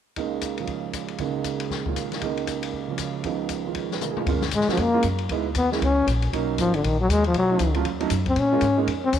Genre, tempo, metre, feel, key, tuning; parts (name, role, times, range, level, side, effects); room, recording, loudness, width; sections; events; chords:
jazz, small-group swing and bop; 234 BPM; 4/4; swing 60% on 8ths; A4 = 441 Hz
warm concert grand piano; accompaniment; 0.2-8.9 s; C#2 to B4; -27 LUFS; right 10 dB
open jazz drum kit; drums; 0.2-9.2 s; hi-hat, kick drum, ride cymbal, snare drum, toms; -31 LUFS; left 5 dB
upright bass; bass; 4.3-9.2 s; G#1 to A#2; -26 LUFS; equal
growling trombone; melody; 4.5-9.2 s; D3 to C#4; -22 LUFS; left 3 dB
moderate plate reverb, RT60 2.2 s; 1960s-style stereo; -22 LUFS; side -9 dB against mid
0.2-4.3 A section; 4.3-9.2 B section
drum fill 4.0
0.2 C#69; 3.2 C#9; 4.3 F#maj9; 5.3 C#m7; 5.8 A#m; 6.3 Bmaj7; 7.3 B9; 8.4 A#m7